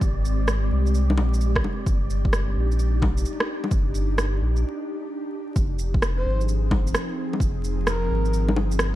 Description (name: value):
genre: future garage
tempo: 130 BPM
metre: 4/4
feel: swing 67% on 16ths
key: F dorian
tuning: A4 = 440 Hz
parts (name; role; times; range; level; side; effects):
- ethereal airy pad; sustained chords; 0.0-9.0 s; F3 to Ab4; -30 LUFS; equal; ensemble chorus, built-in reverb, sidechain pumping
- warm sub bass; bass; 0.0-9.0 s; F1 to C2; -23 LUFS; equal; sidechain pumping
- electronic kick drum; drums; 0.0-7.5 s; none; -24 LUFS; equal; overdrive, studio reverb
- electronic shaker, rim click and bongos; drums; 0.0-8.9 s; none; -27 LUFS; equal; overdrive, studio reverb
- wind-like tuned noise texture; texture; 0.0-4.6 s; D5; -41 LUFS; right 2 dB; built-in reverb
- breathy flute-like synth lead; melody; 6.2-8.5 s; Bb4 to C5; -32 LUFS; left 1 dB; chorus, ping-pong delay
room: digital ambience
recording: dark, warm production, vinyl crackle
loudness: -21 LUFS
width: side -14 dB against mid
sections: 0.0-5.6 A section; 5.6-9.0 A section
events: break 4.6-5.6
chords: 0.0 Abmaj7; 1.9 Ebmaj7/G; 5.6 Fm7